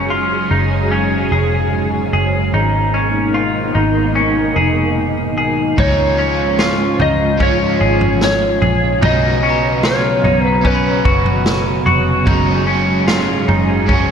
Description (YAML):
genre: dream pop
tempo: 74 BPM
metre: 4/4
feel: straight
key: Db mixolydian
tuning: A4 = 441 Hz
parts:
  - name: soft string machine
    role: sustained chords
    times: 0.0-14.1 s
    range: Ab2 to Ab4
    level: -18 LUFS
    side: equal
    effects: ensemble chorus
  - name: semi-hollow electric guitar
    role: arpeggios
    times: 0.0-14.1 s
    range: Db4 to Ab4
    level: -19 LUFS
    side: left 1 dB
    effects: wide subtle chorus, ping-pong delay
  - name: vintage muted picked electric bass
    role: bass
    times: 0.0-14.1 s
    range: F1 to Db2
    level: -20 LUFS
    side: equal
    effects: none
  - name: electric slide guitar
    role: melody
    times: 5.8-11.8 s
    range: Cb5 to Eb5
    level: -19 LUFS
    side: left 1 dB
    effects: analog chorus, ping-pong delay
  - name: overdriven semi-hollow guitar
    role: accompaniment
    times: 5.8-14.1 s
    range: Db3 to Db5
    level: -22 LUFS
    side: right 2 dB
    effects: tremolo, wide subtle chorus
  - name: vintage drum kit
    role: drums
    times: 5.8-14.1 s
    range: kick drum, snare drum, toms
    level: -19 LUFS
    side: right 1 dB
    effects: gated reverb
  - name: glockenspiel with hard plastic mallets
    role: texture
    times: 6.6-11.7 s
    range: Bb5 to Db6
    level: -29 LUFS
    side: right 2 dB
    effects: ping-pong delay
room: wet lush hall reverb, RT60 3.0 s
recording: bright 1980s-style digital production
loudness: -12 LUFS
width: side -7 dB against mid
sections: 0.0-14.1 A section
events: none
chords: 0.0 Gbsus2; 2.5 Abmadd9; 5.8 Db; 9.0 Cbsus2; 12.3 Gbsus2